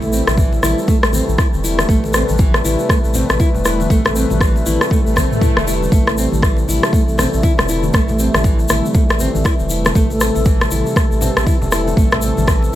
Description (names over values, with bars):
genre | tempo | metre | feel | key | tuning
afro house | 119 BPM | 4/4 | swing 59% on 16ths | A minor | A4 = 440 Hz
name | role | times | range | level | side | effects
warm analog pad | sustained chords | 0.0-12.8 s | C3 to B4 | -22 LUFS | equal | chorus, sidechain pumping
warm sub bass | bass | 0.0-12.7 s | E1 to A2 | -20 LUFS | equal | sidechain pumping
congas | percussion | 0.0-12.8 s | none | -27 LUFS | left 4 dB | none
egg shaker | percussion | 0.0-12.7 s | none | -28 LUFS | left 5 dB | none
nylon-string guitar | arpeggios | 0.1-12.6 s | E3 to E4 | -21 LUFS | right 1 dB | sidechain pumping, tape echo
electronic rim click | drums | 0.3-12.6 s | none | -19 LUFS | left 1 dB | none
electronic kick drum | drums | 0.4-12.6 s | none | -15 LUFS | equal | none
swell | sound effects | 5.1-5.9 s | none | -25 LUFS | left 2 dB | none
room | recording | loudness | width
light reverb, digital ambience | none | -13 LUFS | side -13 dB against mid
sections
0.0-12.8 A section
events
swell 5.1-5.9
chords
0.0 Am7